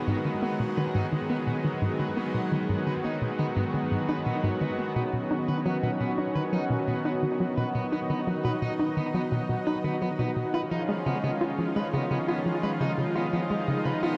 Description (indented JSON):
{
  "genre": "ambient, sequencer-driven space music",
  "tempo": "86 BPM",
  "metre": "4/4",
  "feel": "straight",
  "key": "B lydian",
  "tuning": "A4 = 441 Hz",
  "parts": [
    { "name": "lush unison pad", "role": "sustained chords", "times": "0.0-14.2 s", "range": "D#3 to F#4", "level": "-31 LUFS", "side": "equal", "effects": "chorus" },
    { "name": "bubbling stepped-filter texture", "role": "texture", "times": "0.0-14.2 s", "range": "D#4 to D#5", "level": "-44 LUFS", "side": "equal", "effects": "chorus, built-in reverb" },
    { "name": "electric guitar at the edge of break-up", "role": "arpeggios", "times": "0.1-14.1 s", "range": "B3 to B4", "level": "-40 LUFS", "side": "equal", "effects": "delay" },
    { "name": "hollow square pluck", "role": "riff", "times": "0.1-14.2 s", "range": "G#2 to E#4", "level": "-32 LUFS", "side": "equal", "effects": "chorus, delay" }
  ],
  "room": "wet huge ambient reverb, RT60 8.4 s",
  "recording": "dark, warm production",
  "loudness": "-28 LUFS",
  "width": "mono",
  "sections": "0.0-14.2 A section",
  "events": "fade-in on clean electric guitar 0.0-14.2; filter sweep on synth arpeggio sound 0.0-14.2",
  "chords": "0.0 G#m7; 5.0 Badd9; 10.5 C#add9"
}